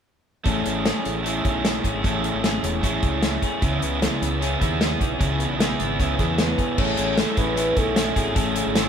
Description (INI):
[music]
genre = jangly indie pop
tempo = 152 BPM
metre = 4/4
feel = straight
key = unclear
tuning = A4 = 438 Hz
[part]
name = crunchy overdriven guitar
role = accompaniment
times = 0.4-8.9 s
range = C#3 to G#4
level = -25 LUFS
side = right 5 dB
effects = none
[part]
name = twelve-string electric guitar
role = arpeggios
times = 0.5-8.9 s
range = C#3 to G#4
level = -28 LUFS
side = left 7 dB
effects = none
[part]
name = fingered electric bass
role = bass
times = 0.5-8.9 s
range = E1 to E2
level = -28 LUFS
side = equal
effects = none
[part]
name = modern studio drum kit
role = drums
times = 0.5-8.8 s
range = crash cymbal, hi-hat, kick drum, snare drum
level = -24 LUFS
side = equal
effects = none
[part]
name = warbly nostalgic lead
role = melody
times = 6.2-8.9 s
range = G#4 to C#5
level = -27 LUFS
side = equal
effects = chorus
[sound]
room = moderate studio reverb, RT60 0.8 s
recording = band playing live in one room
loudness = -20 LUFS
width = side -8 dB against mid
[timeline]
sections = 0.5-6.8 A section; 6.8-8.9 B section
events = none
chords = 0.5 Amaj7; 3.6 C#m7; 6.8 Amaj7